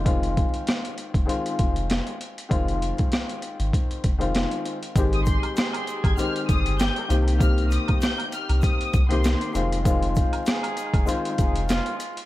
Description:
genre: hip hop, boom-bap hip-hop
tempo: 98 BPM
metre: 4/4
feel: swing 55% on 16ths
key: F minor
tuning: A4 = 439 Hz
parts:
  - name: dark upright piano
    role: accompaniment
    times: 0.0-11.9 s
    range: Eb3 to G4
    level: -28 LUFS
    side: left 3 dB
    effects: cassette tape, high-pass filter, low-pass filter, analog delay
  - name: round analog bass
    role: bass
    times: 0.0-11.8 s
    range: F1 to C2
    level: -24 LUFS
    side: equal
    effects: none
  - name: boom bap sampler-style drum kit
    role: drums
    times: 0.1-12.3 s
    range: hi-hat, kick drum, rim click, snare drum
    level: -24 LUFS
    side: equal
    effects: overdrive, vintage 12-bit sampler grit
  - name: tube shaker and woodblock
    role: percussion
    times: 5.0-12.2 s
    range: none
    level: -40 LUFS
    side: right 5 dB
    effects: analog delay
  - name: rich studio violin section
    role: melody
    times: 5.1-9.4 s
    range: C6 to Ab6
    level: -30 LUFS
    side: left 1 dB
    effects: high-pass filter, low-pass filter, analog delay
  - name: mellow trumpet section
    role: stabs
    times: 5.2-11.9 s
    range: Ab3 to C5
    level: -33 LUFS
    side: right 2 dB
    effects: high-pass filter, low-pass filter, analog delay
room: studio reverb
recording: echo-heavy mix, vinyl crackle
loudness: -21 LUFS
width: side -16 dB against mid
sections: 0.0-5.0 A section; 5.0-12.3 B section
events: none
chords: 0.0 Fm7; 5.0 Abmaj7; 7.1 Cm7; 9.6 Fm7

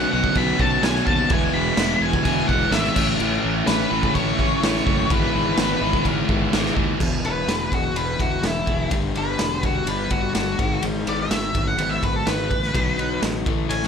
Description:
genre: quiet-loud alternative rock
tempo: 126 BPM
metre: 4/4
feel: straight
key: unclear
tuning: A4 = 442 Hz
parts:
  - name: octave-fuzz lead guitar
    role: melody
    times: 0.0-13.9 s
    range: E4 to B5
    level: -25 LUFS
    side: left 1 dB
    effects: distortion
  - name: distorted electric guitar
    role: riff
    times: 0.0-7.0 s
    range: E2 to B3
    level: -27 LUFS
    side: equal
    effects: distortion
  - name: overdriven semi-hollow guitar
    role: riff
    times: 0.0-13.9 s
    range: E2 to E4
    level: -27 LUFS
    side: left 15 dB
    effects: none
  - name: thick fuzz guitar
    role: riff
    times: 0.0-7.0 s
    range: G#2 to E4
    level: -26 LUFS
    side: right 15 dB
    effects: distortion
  - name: fuzz fingered electric bass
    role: bass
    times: 0.0-13.9 s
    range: E1 to D#2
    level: -28 LUFS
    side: equal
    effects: overdrive
  - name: raw garage drum kit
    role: drums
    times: 0.2-13.9 s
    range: crash cymbal, kick drum, ride cymbal, snare drum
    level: -24 LUFS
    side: right 1 dB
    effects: none
  - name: twelve-string electric guitar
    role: arpeggios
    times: 7.0-13.9 s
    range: E2 to B4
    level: -33 LUFS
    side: right 10 dB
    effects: lush chorus
room: light reverb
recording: none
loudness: -19 LUFS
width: side -7 dB against mid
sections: 0.0-7.0 A section; 7.0-13.9 B section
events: lead electric guitar solo 7.0-13.9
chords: 0.0 Bsus2; 1.3 E; 3.0 Aadd9; 5.1 E/G#; 7.0 E; 8.9 G; 10.6 G#m7; 12.7 B

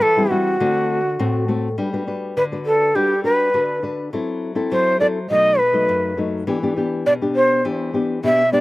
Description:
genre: samba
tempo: 102 BPM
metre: 4/4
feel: straight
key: G major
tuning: A4 = 440 Hz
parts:
  - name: breathy reedy shakuhachi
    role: melody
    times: 0.0-8.6 s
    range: F#4 to E5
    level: -17 LUFS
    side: equal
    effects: slapback echo
  - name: nylon-string guitar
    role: accompaniment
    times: 0.0-8.6 s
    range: F#2 to B4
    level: -22 LUFS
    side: left 2 dB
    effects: none
room: little or no reverb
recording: recorded outdoors, with no room sound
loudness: -17 LUFS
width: side -18 dB against mid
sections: 0.0-1.8 A section; 1.8-8.6 B section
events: none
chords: 0.0 Am7; 0.6 D7; 1.8 Gmaj7; 4.1 F#m7b5; 5.3 B7; 6.5 Em7

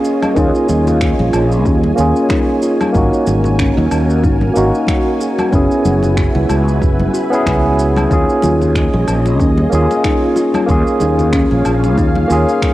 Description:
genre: sunset chillout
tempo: 93 BPM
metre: 4/4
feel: swing 57% on 16ths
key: Eb minor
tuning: A4 = 440 Hz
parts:
  - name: barky tine electric piano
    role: accompaniment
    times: 0.0-12.7 s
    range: Bb3 to Ab4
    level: -15 LUFS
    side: equal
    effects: auto-pan, low-pass filter, cassette tape, analog delay
  - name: soft string machine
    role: sustained chords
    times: 0.0-12.7 s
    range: F4 to Ab5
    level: -22 LUFS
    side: equal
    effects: ensemble chorus, cassette tape
  - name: electronic shaker, woodblock and finger snaps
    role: drums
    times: 0.0-12.7 s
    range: none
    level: -26 LUFS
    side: equal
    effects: overdrive, cassette tape
  - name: congas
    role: percussion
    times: 0.2-12.7 s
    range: none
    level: -25 LUFS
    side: left 2 dB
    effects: none
  - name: kalimba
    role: arpeggios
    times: 0.4-12.6 s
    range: Db4 to Ab4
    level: -22 LUFS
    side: left 2 dB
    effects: none
  - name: fretless electric bass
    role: bass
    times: 0.4-12.4 s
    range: Gb1 to Eb2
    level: -15 LUFS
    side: equal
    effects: analog chorus
  - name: electronic kick drum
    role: drums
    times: 0.4-12.7 s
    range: none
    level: -18 LUFS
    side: equal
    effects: overdrive, cassette tape
room: light reverb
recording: home recording on cassette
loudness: -11 LUFS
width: side -16 dB against mid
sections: 0.0-12.7 A section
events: filter sweep on tine electric piano 0.0-12.7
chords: 0.0 Eb9sus4; 2.9 Ab9sus4; 5.5 Gb9sus4; 8.1 Eb9sus4

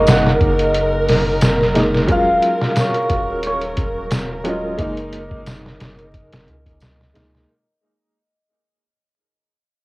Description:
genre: trip hop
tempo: 89 BPM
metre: 4/4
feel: swing 55% on 16ths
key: unclear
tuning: A4 = 440 Hz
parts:
  - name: cimbalom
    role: melody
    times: 0.0-6.9 s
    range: Db5 to Gb5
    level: -21 LUFS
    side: equal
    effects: cassette tape, tape echo
  - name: warm upright piano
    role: accompaniment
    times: 0.0-7.5 s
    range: Gb3 to F4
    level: -22 LUFS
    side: equal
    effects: tremolo, cassette tape, tape echo
  - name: rich studio string section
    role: sustained chords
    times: 0.0-7.5 s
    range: Bb4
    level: -21 LUFS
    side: right 1 dB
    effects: cassette tape
  - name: soft dub sub bass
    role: bass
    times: 0.0-7.5 s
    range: Eb1 to Db2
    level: -26 LUFS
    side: equal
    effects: none
  - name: trip hop sampler-style drum kit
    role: drums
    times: 0.1-7.5 s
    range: hi-hat, kick drum, snare drum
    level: -18 LUFS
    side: equal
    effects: none
  - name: tambourine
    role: percussion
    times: 0.1-7.0 s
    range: none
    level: -34 LUFS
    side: right 1 dB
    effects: none
room: light reverb, small room reverb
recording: home recording on cassette, vinyl crackle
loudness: -15 LUFS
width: side -22 dB against mid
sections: 0.0-7.5 A section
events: fade-out 0.3-7.5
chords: 0.0 Gb69; 2.1 Ebm11; 4.8 Gb69

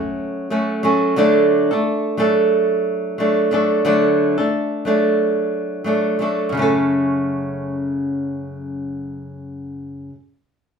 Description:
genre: pop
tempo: 90 BPM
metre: 4/4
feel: swing 60% on 16ths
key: F# minor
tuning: A4 = 442 Hz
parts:
  - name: flamenco guitar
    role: accompaniment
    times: 0.0-10.2 s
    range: F#2 to A4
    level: -17 LUFS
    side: right 1 dB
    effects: none
room: wet studio reverb, RT60 0.6 s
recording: band playing live in one room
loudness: -16 LUFS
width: side -6 dB against mid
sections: 0.0-6.5 A section; 6.5-9.2 B section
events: none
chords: 0.0 F#m; 1.2 D; 6.5 F#m

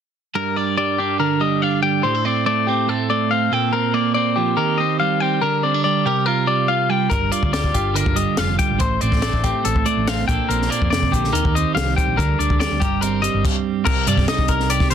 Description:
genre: math rock and midwest emo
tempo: 142 BPM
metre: 4/4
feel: straight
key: G minor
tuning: A4 = 440 Hz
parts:
  - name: twelve-string electric guitar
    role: accompaniment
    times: 0.4-14.9 s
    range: G2 to C5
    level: -21 LUFS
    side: right 9 dB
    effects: none
  - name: twangy electric guitar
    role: arpeggios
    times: 0.4-14.9 s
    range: G4 to G5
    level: -21 LUFS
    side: left 8 dB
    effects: none
  - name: hollow-body short-scale fingered electric bass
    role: bass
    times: 7.1-14.9 s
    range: F1 to G2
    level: -23 LUFS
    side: left 1 dB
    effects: none
  - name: compact cocktail drum kit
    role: drums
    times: 7.1-14.9 s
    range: crash cymbal, hi-hat, kick drum, snare drum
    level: -22 LUFS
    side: left 1 dB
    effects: soft clipping on snare
room: light reverb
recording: dense, heavily limited modern master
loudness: -17 LUFS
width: side -8 dB against mid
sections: 0.4-13.9 A section; 13.9-14.9 B section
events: none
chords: 0.4 Gm; 2.0 Dm7/A; 3.5 Bbmaj9; 4.6 Eb6; 5.4 Gm/D; 6.1 C9sus4; 7.1 Gm7; 8.8 Dm7/A; 10.3 Bbmaj9; 11.3 Eb6; 12.2 Gm/D; 12.8 Gmadd11; 13.9 Cm7

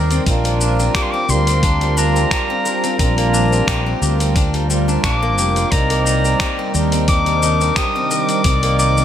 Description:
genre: organic downtempo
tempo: 88 BPM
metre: 4/4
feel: swing 54% on 16ths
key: C minor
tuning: A4 = 439 Hz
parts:
  - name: pedal harmonium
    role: accompaniment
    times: 0.0-9.0 s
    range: D4 to D5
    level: -22 LUFS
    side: right 3 dB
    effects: sidechain pumping, digital delay
  - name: ethereal airy pad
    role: sustained chords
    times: 0.0-9.0 s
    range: C3 to C5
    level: -25 LUFS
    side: equal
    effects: ensemble chorus, built-in reverb, sidechain pumping
  - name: steel-string zither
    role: arpeggios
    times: 0.0-9.0 s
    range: G3 to C5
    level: -23 LUFS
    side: left 4 dB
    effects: digital delay
  - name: mellow fretless electric bass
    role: bass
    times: 0.0-9.0 s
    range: F1 to Eb2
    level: -18 LUFS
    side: equal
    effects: sidechain pumping
  - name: dusty soul sampler-style drum kit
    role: drums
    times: 0.1-9.0 s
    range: finger snaps, hi-hat, shaker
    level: -23 LUFS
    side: left 2 dB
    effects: none
  - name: electronic kick drum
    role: drums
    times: 0.3-8.6 s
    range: none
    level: -19 LUFS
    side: equal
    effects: none
  - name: clear clarinet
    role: melody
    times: 1.0-9.0 s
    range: Bb5 to Eb6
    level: -21 LUFS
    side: left 2 dB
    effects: digital delay
room: light reverb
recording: none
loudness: -14 LUFS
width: side -10 dB against mid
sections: 0.0-9.0 A section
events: none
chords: 0.3 Gm7/Bb; 5.7 Cm9

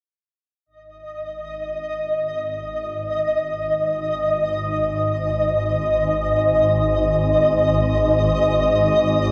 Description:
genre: dark ambient drone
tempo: free time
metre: none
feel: none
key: unclear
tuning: A4 = 440 Hz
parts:
  - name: swarming drone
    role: drone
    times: 1.6-9.3 s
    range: G#1 to G#2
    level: -26 LUFS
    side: equal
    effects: built-in reverb
  - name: flickering grainy texture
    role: texture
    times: 1.1-9.3 s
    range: D#5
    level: -22 LUFS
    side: equal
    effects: built-in reverb, analog chorus, shimmer reverb
room: wet plate reverb, RT60 3.7 s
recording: dreamy mix soaked in reverb, cassette tape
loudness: -20 LUFS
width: mono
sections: 0.7-9.3 A section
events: fade-in on synth drone 0.7-9.3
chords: 0.7 G#5

